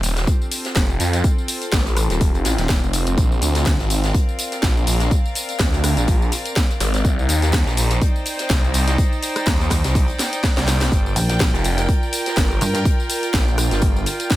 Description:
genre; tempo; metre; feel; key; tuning
bass house; 124 BPM; 4/4; swing 55% on 16ths; G minor; A4 = 440 Hz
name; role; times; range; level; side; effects
phased detuned saw bass; bass; 0.0-14.0 s; Eb1 to F2; -20 LUFS; equal; phaser, sidechain pumping
garage drum kit; drums; 0.0-14.4 s; hi-hat, rim click, snare drum, tambourine; -24 LUFS; equal; small room ambience
jazz brush drum kit; drums; 0.0-14.4 s; hi-hat, snare drum; -31 LUFS; left 2 dB; none
rich chamber string section; texture; 0.0-14.4 s; C4 to G5; -27 LUFS; equal; sidechain pumping
electronic kick drum; drums; 0.3-14.4 s; none; -19 LUFS; equal; small room ambience
pulsing pluck wobble bass; bass; 11.2-12.8 s; Bb1 to G2; -20 LUFS; equal; chorus, overdrive, sidechain pumping
room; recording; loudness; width
small room reverb; none; -16 LUFS; side -15 dB against mid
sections
0.0-14.4 A section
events
drum fill 10.2-10.9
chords
0.0 F; 3.2 Bbadd9; 7.0 Cmadd9; 10.9 Gm7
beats
0.27 0.76 | 1.24 1.73 2.21 2.69 | 3.18 3.66 4.14 4.63 | 5.11 5.60 6.08 6.56 | 7.05 7.53 8.02 8.50 | 8.98 9.47 9.95 10.44 | 10.92 11.40 11.89 12.37 | 12.85 13.34 13.82 14.31

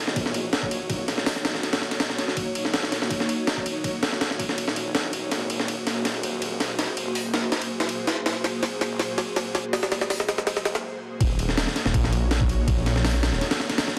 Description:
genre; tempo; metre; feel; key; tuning
drum and bass, jungle; 163 BPM; 4/4; straight; Eb dorian; A4 = 440 Hz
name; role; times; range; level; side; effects
detuned saw bass; bass; 0.1-13.4 s; Eb1 to Bb1; -31 LUFS; equal; high-pass filter
breakbeat sampler-style drum kit; drums; 0.1-14.0 s; hi-hat, kick drum, ride cymbal, snare drum; -27 LUFS; equal; high-pass filter on snare, studio reverb, high-pass filter on cymbals, high-pass filter on kick, high-pass filter on hats
room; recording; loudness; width
light reverb; dense, heavily limited modern master, vinyl crackle; -25 LUFS; mono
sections
0.0-11.2 A section; 11.2-14.0 B section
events
build-up 0.0-11.2; drum fill 5.3-10.8; break 10.8-11.2; drop 11.2-14.0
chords
none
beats
0.16 0.53 | 0.90 1.27 1.63 2.00 | 2.37 2.74 3.11 3.48 | 3.84 4.21 4.58 4.95 | 5.32 5.68 6.05 6.42 | 6.79 7.16 7.52 7.89 | 8.26 8.63 9.00 9.36 | 9.73 10.10 10.47 10.84 | 11.21 11.57 11.94 12.31 | 12.68 13.04 13.41 13.78

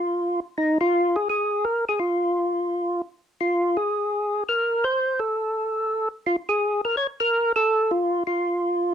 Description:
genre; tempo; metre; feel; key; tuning
jazz; 169 BPM; 4/4; swing 64% on 8ths; unclear; A4 = 440 Hz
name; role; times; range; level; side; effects
percussive tonewheel organ; solo; 0.0-8.9 s; Eb4 to Db5; -21 LUFS; equal; overdrive, slow rotary speaker
room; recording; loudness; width
light reverb; close, detailed microphones; -21 LUFS; side -8 dB against mid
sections
0.0-8.9 A section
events
none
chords
none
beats
0.21 | 0.56 0.92 1.27 1.63 | 1.99 2.34 2.70 3.05 | 3.41 3.76 4.12 4.47 | 4.83 5.18 5.54 5.89 | 6.25 6.60 6.96 7.31 | 7.67 8.02 8.38 8.73

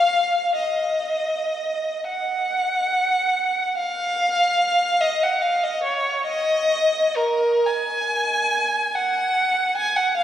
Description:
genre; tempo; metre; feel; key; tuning
classical, free, expressive piece for unaccompanied violin; 30-50 BPM (dotted quarters); 6/8; rubato; unclear; A4 = 444 Hz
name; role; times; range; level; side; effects
rich violin; solo; 0.0-10.2 s; Bb4 to Ab5; -19 LUFS; equal; none
room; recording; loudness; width
wet cathedral reverb, RT60 4.2 s; heard from further back in the room; -19 LUFS; side -11 dB against mid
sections
0.0-3.8 A section; 3.8-10.2 B section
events
none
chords
none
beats
| 0.55 2.06 | 3.75 5.00 | 6.25 7.65 | 8.95 10.17

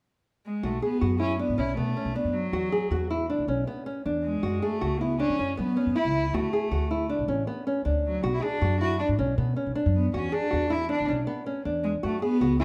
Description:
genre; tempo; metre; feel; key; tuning
contemporary instrumental, contemporary; 158 BPM; 5/4; straight; unclear; A4 = 441 Hz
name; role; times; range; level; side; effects
rich cello; melody; 0.5-12.6 s; F#3 to F#4; -31 LUFS; equal; none
nylon-string guitar; arpeggios; 0.6-12.6 s; B3 to G#4; -31 LUFS; equal; none
upright bass; bass; 0.6-12.6 s; A1 to F#3; -32 LUFS; equal; none
room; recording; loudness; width
moderate recital hall reverb, RT60 1.5 s; none; -27 LUFS; mono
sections
0.6-12.6 A section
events
none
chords
0.0 N.C.; 0.6 E7; 4.4 F#m7; 6.3 D6; 8.2 Bm; 12.0 F#5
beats
0.25 | 0.63 1.01 1.39 1.77 2.16 | 2.54 2.92 3.30 3.68 4.06 | 4.44 4.82 5.20 5.58 5.96 | 6.34 6.72 7.10 7.48 7.86 | 8.24 8.62 9.00 9.38 9.76 | 10.14 10.52 10.90 11.28 11.65 | 12.03 12.41

